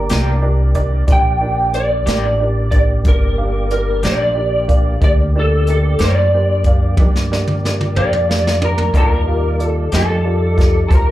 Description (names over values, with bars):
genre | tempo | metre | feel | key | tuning
slow blues | 61 BPM (dotted quarters) | 12/8 | straight | G minor | A4 = 439 Hz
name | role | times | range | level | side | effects
electric guitar through a small old amp | melody | 0.0-11.1 s | A4 to G5 | -19 LUFS | equal | ensemble chorus, slapback echo
warm upright piano | accompaniment | 0.0-11.1 s | D4 to F5 | -24 LUFS | right 3 dB | slapback echo
mellow tonewheel organ | sustained chords | 0.0-11.1 s | G3 to D5 | -28 LUFS | equal | slow rotary speaker, chorus vibrato
upright bass | bass | 0.0-11.1 s | G1 to G2 | -17 LUFS | equal | none
electric guitar through a small old amp | accompaniment | 0.1-10.1 s | Eb3 to G4 | -26 LUFS | left 4 dB | tremolo, slapback echo
jazz brush drum kit | drums | 0.1-11.1 s | hi-hat, kick drum, snare drum, toms | -16 LUFS | equal | none
room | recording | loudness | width
little or no reverb | live gig heard through the venue's PA, club ambience | -13 LUFS | side -14 dB against mid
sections
0.0-11.1 A section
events
drum fill 7.0-8.9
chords
0.0 Gm; 8.9 Ebmaj7